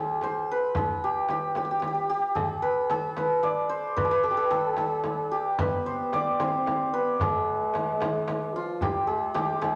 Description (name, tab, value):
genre	Persian modal ensemble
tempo	74 BPM (dotted quarters)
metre	6/8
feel	straight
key	unclear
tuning	A4 = 441 Hz
part	santur	melody	0.0-9.8 s	F4 to D5	-28 LUFS	equal	none
part	frame drum	percussion	0.2-9.8 s	none	-37 LUFS	equal	none
part	tombak	percussion	0.2-9.7 s	none	-42 LUFS	equal	none
part	warm French horn	second line	5.6-9.8 s	F3 to C4	-35 LUFS	equal	none
room	wet large studio reverb, RT60 1.3 s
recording	none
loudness	-27 LUFS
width	mono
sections	0.0-9.8 A section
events	none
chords	none